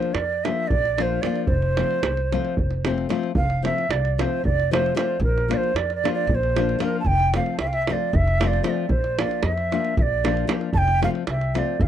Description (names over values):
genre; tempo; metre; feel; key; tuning
balkan folk, Balkan wedding band; 227 BPM (eighths); 7/8; straight; F major; A4 = 440 Hz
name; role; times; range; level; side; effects
breathy ney; melody; 0.0-11.9 s; Bb4 to A5; -24 LUFS; right 3 dB; tape echo
nylon-string guitar; accompaniment; 0.0-11.8 s; F3 to F4; -26 LUFS; left 9 dB; none
davul; percussion; 0.0-11.9 s; none; -26 LUFS; right 2 dB; none
upright bass; bass; 0.1-11.9 s; F1 to F2; -25 LUFS; equal; none
room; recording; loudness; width
light reverb; dry, close 1970s-style studio recording; -20 LUFS; side -10 dB against mid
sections
0.0-3.3 A section; 3.3-11.9 B section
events
speeding up 0.0-11.9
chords
0.0 Bb; 1.5 F; 5.2 Bb; 7.1 F; 8.9 Bb; 10.7 F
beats
0.13 0.40 0.67 0.94 1.21 | 1.47 1.74 2.01 2.28 2.54 2.81 3.08 | 3.34 3.61 3.88 4.14 4.41 4.67 4.94 | 5.20 5.47 5.73 6.00 6.26 6.52 6.79 | 7.05 7.31 7.58 7.84 8.10 8.37 8.63 | 8.89 9.15 9.42 9.68 9.94 10.20 10.46 | 10.72 10.98 11.25 11.51 11.77